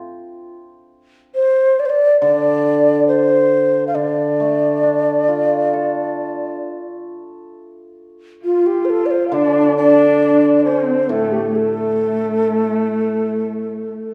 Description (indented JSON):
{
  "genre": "chinese traditional, Chinese chamber ensemble",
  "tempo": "68 BPM",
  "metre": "4/4",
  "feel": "rubato",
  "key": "D yu mode",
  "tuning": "A4 = 440 Hz",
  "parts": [
    { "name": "hammered dulcimer", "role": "accompaniment", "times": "0.0-13.7 s", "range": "A2 to A4", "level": "-23 LUFS", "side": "equal", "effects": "none" },
    { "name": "mellow xiao", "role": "melody", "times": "1.3-14.1 s", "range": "F4 to F5", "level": "-18 LUFS", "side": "equal", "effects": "none" },
    { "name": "dark horsehead fiddle", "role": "second line", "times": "8.5-14.1 s", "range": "A3 to F4", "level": "-21 LUFS", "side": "equal", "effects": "none" }
  ],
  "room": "wet recital hall reverb, RT60 1.6 s",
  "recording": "heard from further back in the room",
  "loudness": "-16 LUFS",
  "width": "mono",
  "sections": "0.0-7.5 A section; 7.5-14.1 B section",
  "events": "none",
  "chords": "none"
}